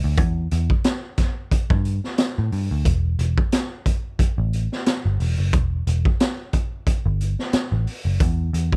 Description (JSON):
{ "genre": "funk", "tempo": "90 BPM", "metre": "4/4", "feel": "swing 56% on 16ths", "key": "E minor", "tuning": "A4 = 440 Hz", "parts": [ { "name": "vintage muted picked electric bass", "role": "bass", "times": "0.0-8.7 s", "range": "E1 to A2", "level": "-23 LUFS", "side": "equal", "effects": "none" }, { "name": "raw garage drum kit", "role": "drums", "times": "0.2-8.8 s", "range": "hi-hat, kick drum, snare drum", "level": "-24 LUFS", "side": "equal", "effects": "none" } ], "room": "little or no reverb", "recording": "dry, close 1970s-style studio recording", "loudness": "-22 LUFS", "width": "mono", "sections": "0.0-8.8 A section", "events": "none", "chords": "none" }